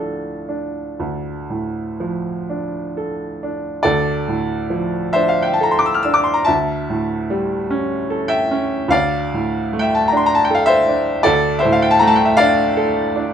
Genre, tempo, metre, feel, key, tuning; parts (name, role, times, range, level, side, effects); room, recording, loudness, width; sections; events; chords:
classical, romantic nocturne for solo piano; 39-54 BPM; 4/4; rubato; D minor; A4 = 438 Hz
bright baby grand piano; solo; 0.0-13.3 s; D2 to F6; -16 LUFS; equal
light reverb; close, detailed microphones; -16 LUFS; side -8 dB against mid
0.0-3.9 A section; 3.9-13.3 A section
0.0 Dm; 6.5 A7/D; 8.9 Dm